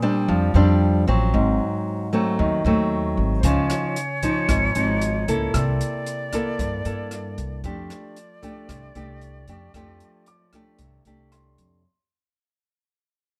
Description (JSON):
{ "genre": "bossa nova", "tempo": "114 BPM", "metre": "4/4", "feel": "straight", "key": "F major", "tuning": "A4 = 443 Hz", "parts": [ { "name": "nylon-string guitar", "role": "accompaniment", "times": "0.0-11.8 s", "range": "G2 to A4", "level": "-25 LUFS", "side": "equal", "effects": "none" }, { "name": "warm grand piano", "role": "accompaniment", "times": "0.0-1.4, 5.5-12.0 s", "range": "C6 to E6", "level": "-40 LUFS", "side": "equal", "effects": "none" }, { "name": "upright bass", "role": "bass", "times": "0.3-11.8 s", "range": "Ab1 to G2", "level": "-24 LUFS", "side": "equal", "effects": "none" }, { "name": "jazz flute", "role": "second line", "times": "3.4-11.6 s", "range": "C5 to D5", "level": "-31 LUFS", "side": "equal", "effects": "none" }, { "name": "open jazz drum kit", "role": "drums", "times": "3.4-11.7 s", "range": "hi-hat, kick drum, rim click", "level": "-30 LUFS", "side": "equal", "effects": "none" } ], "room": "little or no reverb", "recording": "close, detailed microphones", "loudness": "-22 LUFS", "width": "mono", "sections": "0.0-11.9 A section", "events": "fade-out 0.0-11.9", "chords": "0.0 Bb69; 1.3 Ab7b9; 3.4 Dbadd9; 5.5 C13; 7.6 F69" }